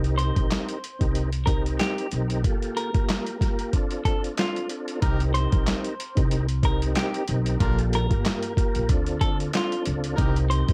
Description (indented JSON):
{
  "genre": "hip hop, boom-bap hip-hop",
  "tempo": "93 BPM",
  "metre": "4/4",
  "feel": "swing 55% on 16ths",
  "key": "unclear",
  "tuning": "A4 = 440 Hz",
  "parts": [
    { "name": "tonewheel organ", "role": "accompaniment", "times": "0.0-10.7 s", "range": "Bb3 to Bb4", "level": "-33 LUFS", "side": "equal", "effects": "chorus vibrato, fast rotary speaker, high-pass filter, low-pass filter" },
    { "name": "upright bass", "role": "bass", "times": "0.0-10.7 s", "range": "G1 to D2", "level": "-28 LUFS", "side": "equal", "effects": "none" },
    { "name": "lo-fi sampler-style drum kit", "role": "drums", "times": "0.0-10.7 s", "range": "handclaps, hi-hat, kick drum, snare drum", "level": "-27 LUFS", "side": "equal", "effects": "none" },
    { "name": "semi-hollow electric guitar", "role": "melody", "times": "0.2-10.7 s", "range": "F4 to C5", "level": "-34 LUFS", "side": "equal", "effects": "high-pass filter, low-pass filter" },
    { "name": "muted trumpet section", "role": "stabs", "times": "5.0-10.4 s", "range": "D4 to Bb4", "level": "-39 LUFS", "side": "equal", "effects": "high-pass filter, low-pass filter, analog delay" }
  ],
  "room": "light reverb",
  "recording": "vinyl crackle",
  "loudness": "-25 LUFS",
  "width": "mono",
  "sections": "0.0-5.0 A section; 5.0-10.7 B section",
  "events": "none",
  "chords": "0.0 Cm7; 2.4 Gm9/Bb; 3.7 Dm7; 5.0 Cm7; 7.6 Gm9; 8.9 Dm7; 10.2 Cm7"
}